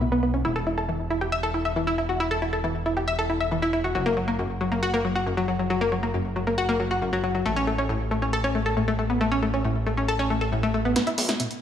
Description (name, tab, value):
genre	uplifting trance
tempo	137 BPM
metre	4/4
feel	straight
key	unclear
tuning	A4 = 440 Hz
part	analog pluck	arpeggios	0.0-11.5 s	F#2 to E5	-24 LUFS	left 1 dB	chorus, digital delay
part	gritty driven synth bass	bass	0.0-11.3 s	E1 to B1	-29 LUFS	equal	high-pass filter
part	punchy analog drum machine	drums	11.0-11.6 s	hi-hat, snare drum	-25 LUFS	right 1 dB	overdrive
room	moderate lush hall reverb, RT60 1.8 s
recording	studio ambience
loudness	-22 LUFS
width	side -9 dB against mid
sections	0.0-11.0 A section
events	drum fill 11.0-11.6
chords	0.4 N.C.; 4.0 F#; 7.5 A; 11.0 N.C.